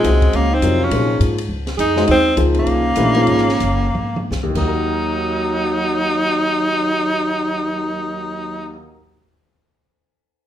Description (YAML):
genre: modal jazz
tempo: 145-207 BPM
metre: 4/4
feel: swing 60% on 8ths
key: Eb dorian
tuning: A4 = 442 Hz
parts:
  - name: edgy tenor saxophone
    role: melody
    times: 0.0-8.8 s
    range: Ab3 to Eb4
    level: -19 LUFS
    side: left 1 dB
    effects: none
  - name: clear alto saxophone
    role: second line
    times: 0.0-8.8 s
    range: Gb3 to Ab4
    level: -24 LUFS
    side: right 4 dB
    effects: none
  - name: warm grand piano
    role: accompaniment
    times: 0.0-9.0 s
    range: Eb2 to Eb5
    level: -22 LUFS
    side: left 2 dB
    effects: none
  - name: upright bass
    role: bass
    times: 0.0-8.8 s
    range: Gb1 to Bb2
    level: -20 LUFS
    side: equal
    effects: none
  - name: compact cocktail drum kit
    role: drums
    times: 0.0-4.6 s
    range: crash cymbal, hi-hat, kick drum, ride cymbal, snare drum, toms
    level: -27 LUFS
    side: equal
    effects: none
room: moderate large studio reverb, RT60 0.8 s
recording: minimal, uncompressed stereo recording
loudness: -15 LUFS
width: side -11 dB against mid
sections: 0.0-4.7 A section; 4.7-8.0 B section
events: slowing down 2.1-4.7; drum fill 4.0-4.3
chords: 0.0 Eb13sus4; 4.5 Ebm